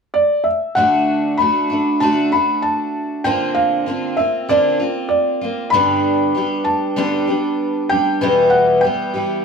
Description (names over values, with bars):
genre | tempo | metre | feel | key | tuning
acoustic folk duo or small band | 97 BPM | 4/4 | straight | D major | A4 = 440 Hz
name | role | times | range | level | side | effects
felt-muted upright piano | melody | 0.1-9.4 s | D5 to B5 | -18 LUFS | equal | none
picked twelve-string acoustic guitar | accompaniment | 0.8-9.4 s | E2 to G4 | -18 LUFS | equal | none
room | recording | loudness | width
wet small room ambience, RT60 0.5 s | band playing live in one room | -15 LUFS | side -5 dB against mid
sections
0.8-9.4 A section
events
none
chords
0.0 N.C.; 0.8 D; 3.3 Bbadd9; 5.7 G; 8.2 Em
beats
0.15 | 0.77 1.39 2.01 2.63 | 3.25 3.87 4.49 5.11 | 5.74 6.36 6.98 7.60 | 8.22 8.84